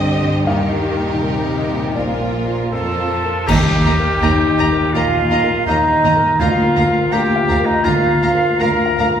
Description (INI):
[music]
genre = cinematic, emotional film score for orchestra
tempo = 82 BPM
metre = 4/4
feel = rubato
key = unclear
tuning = A4 = 441 Hz
[part]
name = rich studio violin section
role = second line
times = 0.0-9.1 s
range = F4 to F5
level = -26 LUFS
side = left 2 dB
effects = none
[part]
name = warm concert grand piano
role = accompaniment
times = 0.0-9.2 s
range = Bb1 to G5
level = -21 LUFS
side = left 1 dB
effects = none
[part]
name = warm studio viola section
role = accompaniment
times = 0.0-9.1 s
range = G3 to Eb5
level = -28 LUFS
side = right 1 dB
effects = none
[part]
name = rich studio cello section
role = bass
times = 0.0-9.1 s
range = D2 to Eb3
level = -23 LUFS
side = right 2 dB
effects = none
[part]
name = cymbal swell, clash cymbals and concert bass drum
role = percussion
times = 0.5-4.9 s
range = none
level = -23 LUFS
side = equal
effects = none
[part]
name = bright clarinet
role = second line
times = 2.7-9.1 s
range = Eb4 to Bb4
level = -18 LUFS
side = equal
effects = none
[part]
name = flute section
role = second line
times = 2.7-9.1 s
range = Eb5 to Bb5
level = -21 LUFS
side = right 2 dB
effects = none
[part]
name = warm studio violin section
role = melody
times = 3.5-9.1 s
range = Bb5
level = -25 LUFS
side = left 2 dB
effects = none
[part]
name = dark French horn section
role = sustained chords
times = 3.5-9.2 s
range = Bb3 to F4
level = -23 LUFS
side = left 3 dB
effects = none
[part]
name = warm studio double bass section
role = bass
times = 3.5-9.1 s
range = D2 to Eb2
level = -22 LUFS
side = right 1 dB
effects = none
[sound]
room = wet recital hall reverb, RT60 1.5 s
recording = recorded in a church or concert hall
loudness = -14 LUFS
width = side -8 dB against mid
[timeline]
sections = 0.0-3.5 A section; 3.5-9.2 B section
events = band accent 3.5-4.2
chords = 0.5 Eb; 2.0 Bb; 2.7 Fsus4; 3.5 Eb; 6.4 Bb/D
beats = | 0.46 1.20 1.95 2.72 | 3.48 4.22 4.95 5.68 | 6.41 7.13 7.86 8.62